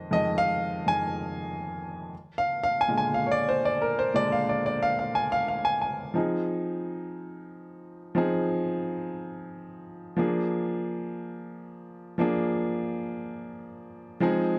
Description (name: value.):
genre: disco.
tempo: 119 BPM.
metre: 4/4.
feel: straight.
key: unclear.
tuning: A4 = 440 Hz.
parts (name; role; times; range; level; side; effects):
warm baby grand piano; solo; 0.0-14.6 s; F2 to Ab5; -29 LUFS; equal; none.
room: moderate echo chamber reverb, RT60 1.4 s.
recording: dark, warm production.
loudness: -28 LUFS.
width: mono.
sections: 0.0-6.1 A section; 6.1-14.2 B section.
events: grand piano solo 0.0-6.1.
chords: 0.0 Fm7; 2.1 Bb7; 6.1 Fm7; 10.2 Bb7.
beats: | 0.11 0.62 1.12 1.62 | 2.12 2.63 3.13 3.63 | 4.14 4.64 5.14 5.65 | 6.15 6.65 7.16 7.66 | 8.16 8.67 9.17 9.68 | 10.18 10.69 11.19 11.70 | 12.20 12.70 13.21 13.71 | 14.21.